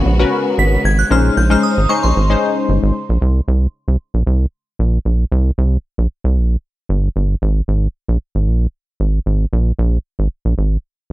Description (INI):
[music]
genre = funk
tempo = 114 BPM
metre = 4/4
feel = straight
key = C phrygian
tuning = A4 = 440 Hz
[part]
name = funky polysynth comp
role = accompaniment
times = 0.0-2.9 s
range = Ab3 to C5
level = -17 LUFS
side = left 4 dB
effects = chorus
[part]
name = clear studio string section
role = sustained chords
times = 0.0-3.2 s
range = Db3 to C5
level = -24 LUFS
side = right 1 dB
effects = none
[part]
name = rubbery square bass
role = bass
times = 0.0-10.8 s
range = G1 to C2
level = -14 LUFS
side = equal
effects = none
[part]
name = glassy synth bell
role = melody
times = 0.6-3.2 s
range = C6 to Cb7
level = -21 LUFS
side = equal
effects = chorus, slapback echo
[sound]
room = little or no reverb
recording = dry, close 1970s-style studio recording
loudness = -14 LUFS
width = side -17 dB against mid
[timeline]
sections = 0.0-3.2 A section; 3.2-11.1 B section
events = synth bell solo 0.0-3.2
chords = 0.0 Abm11; 1.1 Bbm11; 3.2 C5; 7.4 Absus2